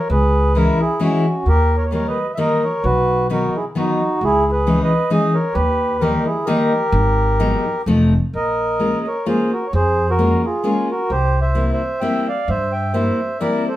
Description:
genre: musette waltz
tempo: 130 BPM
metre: 3/4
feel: swing 54% on 8ths, rubato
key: unclear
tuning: A4 = 439 Hz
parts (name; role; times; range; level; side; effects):
- mellow accordion; melody; 0.0-13.8 s; C#4 to G5; -19 LUFS; right 1 dB; none
- upright bass; bass; 0.1-13.1 s; F1 to G2; -19 LUFS; equal; none
- picked steel-string acoustic guitar; accompaniment; 0.5-13.7 s; D#3 to F4; -19 LUFS; left 2 dB; none
room: wet studio reverb, RT60 0.6 s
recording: heard from further back in the room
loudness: -15 LUFS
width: side -14 dB against mid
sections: 0.0-8.3 A section; 8.3-13.8 B section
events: none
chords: 0.1 C#m; 1.5 D#; 2.8 B; 4.2 C#madd9; 5.6 D#; 6.9 G#m7; 7.9 F7; 8.3 Bbm7; 11.1 C7

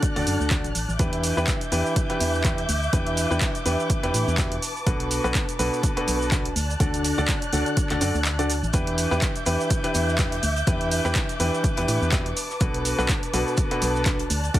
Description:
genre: piano house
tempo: 124 BPM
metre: 4/4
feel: swing 56% on 16ths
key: E minor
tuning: A4 = 440 Hz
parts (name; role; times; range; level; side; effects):
- dark studio violin section; sustained chords; 0.0-14.6 s; B4 to G6; -31 LUFS; equal; sidechain pumping
- clear grand piano; riff; 0.0-14.6 s; B2 to D5; -26 LUFS; equal; sidechain pumping, digital delay
- electronic kick drum; drums; 0.0-14.6 s; none; -25 LUFS; equal; none
- punchy analog drum machine; drums; 0.0-14.6 s; handclaps, hi-hat, shaker; -29 LUFS; right 1 dB; none
- organ-like FM bass; bass; 0.2-14.6 s; A1 to A2; -27 LUFS; equal; sidechain pumping
- damped 70s drum kit; drums; 8.7-14.6 s; hi-hat, shaker, snare drum; -39 LUFS; equal; none
room: light reverb, small room ambience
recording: heavily compressed radio sound, multiband compression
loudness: -21 LUFS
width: side -14 dB against mid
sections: 0.0-14.6 A section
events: kick drops out 8.3-8.7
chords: 0.0 D; 1.0 Em7; 4.6 Bm7; 6.6 D; 8.7 Em7; 12.4 Bm7

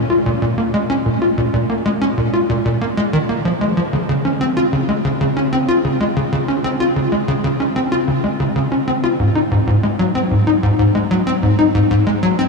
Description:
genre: ambient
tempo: 94 BPM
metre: 4/4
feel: straight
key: unclear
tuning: A4 = 441 Hz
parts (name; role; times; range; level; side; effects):
- tight sequencer bass; solo; 0.0-12.5 s; Ab2 to F4; -14 LUFS; left 1 dB; lush chorus, tape echo
room: wet huge ambient reverb, RT60 8.0 s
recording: in a vast, echoing space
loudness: -14 LUFS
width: side -3 dB against mid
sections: 0.0-4.1 A section; 4.1-12.5 B section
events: none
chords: none

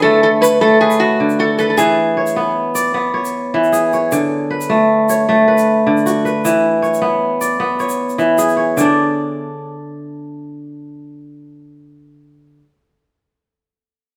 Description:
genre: west african traditional, West African string and xylophone music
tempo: 103 BPM (dotted quarters)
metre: 12/8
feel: straight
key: unclear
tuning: A4 = 440 Hz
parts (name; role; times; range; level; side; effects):
- metal-body resonator slide guitar; melody; 0.0-2.5 s; F#4 to B4; -16 LUFS; equal; none
- kora; arpeggios; 0.0-12.6 s; D3 to D5; -16 LUFS; equal; none
- egg shaker; percussion; 0.4-9.0 s; none; -32 LUFS; equal; none
room: wet stone room reverb, RT60 1.2 s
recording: band playing live in one room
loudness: -15 LUFS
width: mono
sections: 0.0-8.8 A section; 8.8-11.1 B section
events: none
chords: 0.0 D; 1.8 E; 4.1 D; 6.4 E; 8.8 N.C.

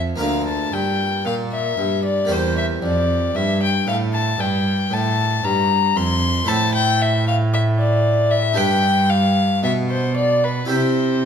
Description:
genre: classical, baroque-style sonata movement with continuo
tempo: 57 BPM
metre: 4/4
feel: straight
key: unclear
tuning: A4 = 440 Hz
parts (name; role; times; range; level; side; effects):
- harpsichord; accompaniment; 0.0-11.3 s; D2 to C5; -24 LUFS; right 1 dB; none
- rich cello; bass; 0.0-11.3 s; D2 to C3; -20 LUFS; right 1 dB; none
- warm violin; melody; 0.2-11.3 s; B4 to C6; -20 LUFS; left 3 dB; none
room: wet recital hall reverb, RT60 1.4 s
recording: minimal, uncompressed stereo recording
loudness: -16 LUFS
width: side -8 dB against mid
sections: 0.0-11.3 A section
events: none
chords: 0.2 Bb/D; 2.3 C7/E; 6.5 Am; 8.6 G; 10.7 C

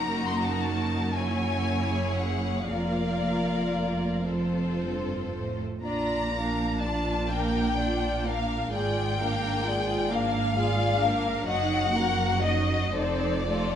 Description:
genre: classical, slow romantic movement for string orchestra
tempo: 36-44 BPM (dotted quarters)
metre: 6/8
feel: rubato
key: unclear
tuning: A4 = 439 Hz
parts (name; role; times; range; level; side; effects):
- rich studio violin section; melody; 0.0-13.8 s; D5 to C6; -30 LUFS; left 4 dB; none
- clear studio violin section; second line; 0.0-13.8 s; F4 to Gb5; -33 LUFS; left 2 dB; none
- rich studio viola section; accompaniment; 0.0-13.8 s; Gb3 to Gb4; -31 LUFS; right 1 dB; none
- rich studio cello section; bass; 0.0-13.8 s; F2 to Bb2; -32 LUFS; right 2 dB; none
- rich studio double bass section; bass; 0.0-13.8 s; F1 to Bb1; -32 LUFS; right 2 dB; none
room: wet recital hall reverb, RT60 1.5 s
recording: nothing above 10.8 kHz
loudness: -24 LUFS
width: side -9 dB against mid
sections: 0.0-13.8 A section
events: none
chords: 0.0 Ebm/Gb; 1.2 Gb7; 2.7 Bb/F; 4.3 F; 5.8 Bb; 8.7 Bb7/Ab; 11.5 Ebm/Gb; 12.9 F7

